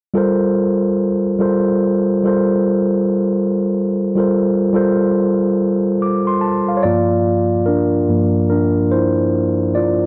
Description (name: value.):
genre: hip hop.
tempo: 72 BPM.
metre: 4/4.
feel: swing 62% on 16ths.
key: G dorian.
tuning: A4 = 440 Hz.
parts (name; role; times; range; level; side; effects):
mellow tine electric piano; solo; 0.1-10.1 s; G2 to D6; -16 LUFS; equal; none.
room: light reverb, digital ambience.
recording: cassette tape.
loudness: -16 LUFS.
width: mono.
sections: 0.2-6.8 A section; 6.8-10.1 B section.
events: tine electric piano solo 6.8-10.1.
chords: 0.2 Gm11; 6.8 Gm7.